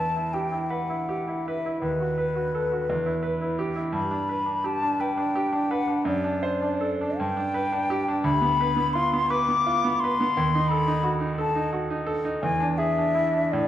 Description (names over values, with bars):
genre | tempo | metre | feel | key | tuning
classical, romantic duo for flute and grand piano | 57 BPM (dotted quarters) | 6/8 | uneven beats, rubato | E minor | A4 = 438 Hz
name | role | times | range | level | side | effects
mellow concert flute | melody | 0.0-13.7 s | B4 to D6 | -26 LUFS | left 3 dB | none
bright grand piano | accompaniment | 0.0-13.7 s | D2 to C5 | -26 LUFS | right 2 dB | none
room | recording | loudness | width
wet recital hall reverb, RT60 1.6 s | dark, warm production | -23 LUFS | side -11 dB against mid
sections
0.0-13.7 A section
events
none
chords
0.0 Em; 1.8 B7/D#; 2.9 Em; 4.0 G; 6.1 D7/F#; 7.2 G; 8.2 Bdim/D; 10.4 D#dim; 12.4 E7